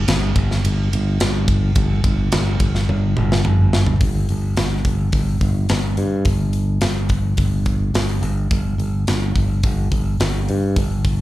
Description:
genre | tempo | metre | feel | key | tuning
hard rock | 107 BPM | 4/4 | straight | unclear | A4 = 441 Hz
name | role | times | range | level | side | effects
modern bright fingered electric bass | bass | 0.0-11.2 s | G1 to G2 | -18 LUFS | equal | none
tight metal drum kit | drums | 0.1-11.2 s | hi-hat, kick drum, ride cymbal, snare drum, toms | -20 LUFS | equal | none
room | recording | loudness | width
little or no reverb | live gig heard through the venue's PA, club reverb | -16 LUFS | side -16 dB against mid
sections
0.0-4.0 A section; 4.0-11.2 B section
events
drum fill 2.9-4.0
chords
none

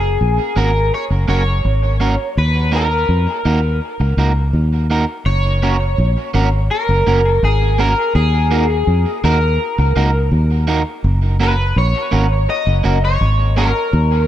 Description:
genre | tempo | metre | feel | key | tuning
roots reggae | 83 BPM | 4/4 | straight | F# major | A4 = 440 Hz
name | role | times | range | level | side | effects
electric guitar at the edge of break-up | melody | 0.0-14.3 s | G#4 to D#5 | -19 LUFS | left 1 dB | analog chorus, tape echo
fingered electric bass | bass | 0.0-14.3 s | F#1 to E#2 | -15 LUFS | equal | tube saturation
electric guitar at the edge of break-up | accompaniment | 0.6-13.7 s | A#3 to A#4 | -22 LUFS | right 4 dB | tape echo
room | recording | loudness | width
light reverb | echo-heavy mix | -13 LUFS | side -12 dB against mid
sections
0.0-5.3 A section; 5.3-14.3 B section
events
none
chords
0.0 F#; 2.4 D#m; 5.3 F#; 8.1 D#m; 11.0 F#

